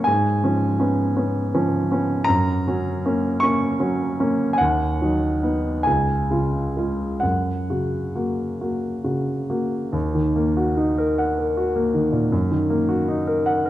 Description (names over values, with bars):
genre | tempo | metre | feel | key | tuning
classical, romantic nocturne for solo piano | 42-56 BPM (dotted quarters) | 12/8 | rubato | F# major, Eb minor from 9.9 s | A4 = 436 Hz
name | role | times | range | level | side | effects
warm grand piano | solo | 0.0-13.7 s | C#2 to C#6 | -19 LUFS | equal | none
room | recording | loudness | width
wet recital hall reverb, RT60 1.6 s | dark, warm production | -19 LUFS | side -14 dB against mid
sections
0.0-9.9 A section; 9.9-13.7 B section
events
none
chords
0.1 C#7/G#; 2.3 F#; 4.6 B/D#; 5.9 C#; 7.2 F#; 9.9 Ebm; 12.3 Ebm/Gb